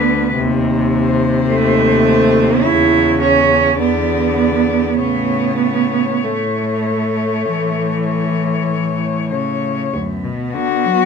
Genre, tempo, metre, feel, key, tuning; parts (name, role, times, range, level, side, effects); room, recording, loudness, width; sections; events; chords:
classical, lyrical piece for cello ensemble; 47-54 BPM; 4/4; rubato; A major; A4 = 440 Hz
rich cello; melody; 0.0-11.1 s; F#4 to D5; -21 LUFS; left 7 dB
rich cello; second line; 0.0-11.1 s; A3 to E4; -16 LUFS; right 5 dB
rich cello; accompaniment; 0.0-11.1 s; F#2 to F#3; -20 LUFS; left 6 dB
rich cello; bass; 0.0-10.9 s; D2 to A2; -20 LUFS; right 2 dB
moderate studio ambience, RT60 0.5 s; minimal, uncompressed stereo recording; -13 LUFS; side -6 dB against mid
0.0-9.9 A section; 9.9-11.1 B section
0.4 Adim/Eb; 2.6 C#m/E; 3.8 E5; 5.0 A; 9.9 Bm/D